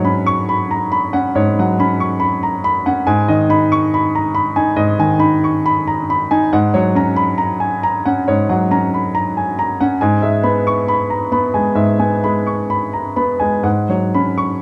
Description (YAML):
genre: neoclassical minimalist piano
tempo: 69 BPM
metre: 4/4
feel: rubato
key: G# minor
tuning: A4 = 440 Hz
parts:
  - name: clear grand piano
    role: solo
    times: 0.0-14.6 s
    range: G#2 to C#6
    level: -16 LUFS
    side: equal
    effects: none
room: light reverb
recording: dark, warm production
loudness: -16 LUFS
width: mono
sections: 0.0-14.6 A section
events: none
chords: 0.0 Bsus2/G#; 3.1 G#m; 6.5 F#/G#; 10.0 E/G#; 13.6 Bsus2/G#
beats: 0.46 1.33 2.20 | 3.07 3.93 4.79 5.66 | 6.53 7.38 8.24 9.11 | 9.97 10.86 11.76 12.68 | 13.64 14.60